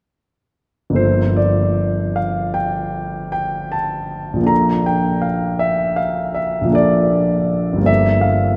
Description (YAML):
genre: classical, impressionist solo piano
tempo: 50-56 BPM (dotted quarters)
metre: 9/8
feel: rubato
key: G dorian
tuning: A4 = 441 Hz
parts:
  - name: clear grand piano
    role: solo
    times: 0.9-8.6 s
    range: G1 to Bb5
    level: -18 LUFS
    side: equal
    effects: none
room: wet church reverb, RT60 3.4 s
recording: recorded in a church or concert hall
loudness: -18 LUFS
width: mono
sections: 1.0-8.6 A section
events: none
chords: 1.0 Gm11; 4.5 Bbmaj7; 7.9 Gm11